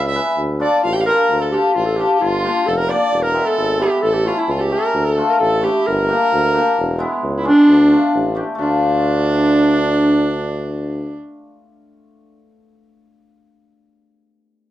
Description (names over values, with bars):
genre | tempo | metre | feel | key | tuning
klezmer | 132 BPM | 2/4 | straight | D harmonic minor | A4 = 440 Hz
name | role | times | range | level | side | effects
mellow clarinet | melody | 0.0-11.2 s | D4 to E5 | -17 LUFS | equal | plate reverb
rich violin | second line | 0.0-11.2 s | D4 to G5 | -22 LUFS | right 3 dB | none
warm tuba | bass | 0.0-11.2 s | E1 to D2 | -21 LUFS | equal | none
cimbalom | accompaniment | 0.1-13.0 s | G#3 to B4 | -20 LUFS | left 3 dB | none
room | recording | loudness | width
wet studio reverb, RT60 0.5 s | dark, warm production | -14 LUFS | side -14 dB against mid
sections
0.0-1.3 A section; 1.3-8.6 B section; 8.6-10.4 C section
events
clarinet solo 0.0-1.3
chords
0.4 Dm; 2.2 Gm; 3.1 E; 4.0 A; 4.9 D5; 5.9 Gm; 6.8 E; 7.7 Dm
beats
| 0.37 0.83 | 1.29 1.75 | 2.20 2.66 | 3.12 3.58 | 4.03 4.49 | 4.95 5.40 | 5.86 6.31 | 6.77 7.23 | 7.68 8.14 | 8.59 9.05 | 9.50 9.96